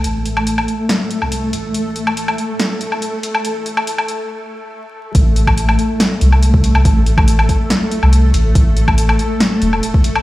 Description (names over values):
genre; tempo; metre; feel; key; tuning
deep dubstep; 141 BPM; 4/4; half-time; A minor; A4 = 439 Hz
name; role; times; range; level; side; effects
granular cloud pad; sustained chords; 0.0-10.2 s; A3 to A4; -20 LUFS; equal; built-in reverb
soft dub sub bass; bass; 0.0-9.8 s; E1 to C2; -14 LUFS; equal; none
deep house drum kit; drums; 0.0-10.2 s; hi-hat, snare drum, woodblock; -19 LUFS; left 1 dB; overdrive
electronic kick drum; drums; 5.1-10.0 s; none; -14 LUFS; equal; overdrive
room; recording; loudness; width
light reverb; played on a big sound system in a bare room, stone room reverb, vinyl crackle, high-pass filter; -12 LUFS; side -17 dB against mid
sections
0.0-5.1 A section; 5.1-10.2 B section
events
build-up 0.0-5.1; break 4.3-5.1; drop 5.1-10.2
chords
0.0 A5